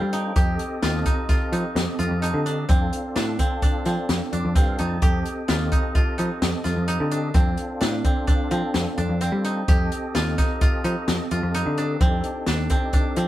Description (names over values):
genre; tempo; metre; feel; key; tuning
progressive instrumental, band music in an uneven meter; 129 BPM; 5/4; straight; F mixolydian; A4 = 440 Hz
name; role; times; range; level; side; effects
tonewheel organ; accompaniment; 0.0-13.3 s; C4 to A5; -30 LUFS; equal; overdrive, chorus vibrato, slow rotary speaker
koto; arpeggios; 0.0-13.3 s; C4 to G4; -28 LUFS; equal; none
picked electric bass; bass; 0.0-13.3 s; Eb2 to G3; -24 LUFS; equal; none
open jazz drum kit; drums; 0.1-13.3 s; hi-hat, kick drum, snare drum; -22 LUFS; equal; none
room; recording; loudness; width
light reverb; band playing live in one room; -20 LUFS; side -14 dB against mid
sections
0.0-13.3 A section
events
tonewheel organ fill 0.0-0.4, 4.1-5.0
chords
0.4 F7; 2.7 F6; 5.0 F7; 7.4 F69; 9.7 F7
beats
| 0.36 0.83 1.29 1.76 2.23 | 2.69 3.16 3.62 4.09 4.56 | 5.02 5.49 5.95 6.42 6.88 | 7.35 7.82 8.28 8.75 9.21 | 9.68 10.14 10.61 11.08 11.54 | 12.01 12.47 12.94